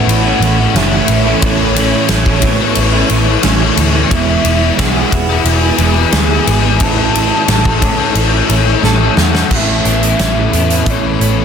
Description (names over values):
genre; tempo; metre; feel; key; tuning
rock, shoegaze and dream pop; 89 BPM; 4/4; straight; A major; A4 = 440 Hz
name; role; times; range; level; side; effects
hollow clarinet-like synth lead; melody; 0.0-11.4 s; C#5 to A5; -21 LUFS; equal; chorus, digital delay
icy glass pad; sustained chords; 0.0-11.4 s; G#4 to C#6; -24 LUFS; right 1 dB; chorus, built-in reverb
electric guitar through a small old amp; arpeggios; 0.0-11.4 s; E3 to A4; -22 LUFS; right 2 dB; analog chorus, digital delay
biting overdriven guitar; riff; 0.0-11.4 s; A2 to E4; -16 LUFS; left 11 dB; ensemble chorus
crunchy overdriven guitar; riff; 0.0-11.4 s; A2 to E4; -18 LUFS; right 9 dB; reverse reverb
vintage muted picked electric bass; bass; 0.1-11.4 s; E1 to E2; -16 LUFS; equal; none
big rock drum kit; drums; 0.1-11.4 s; crash cymbal, hi-hat, kick drum, ride cymbal, snare drum; -16 LUFS; equal; none
room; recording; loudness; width
studio ambience; dense, heavily limited modern master; -10 LUFS; side -7 dB against mid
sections
0.0-9.5 A section; 9.5-11.4 B section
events
drum fill 8.8-9.5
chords
0.0 Aadd9; 4.1 E; 6.8 A; 9.5 Aadd9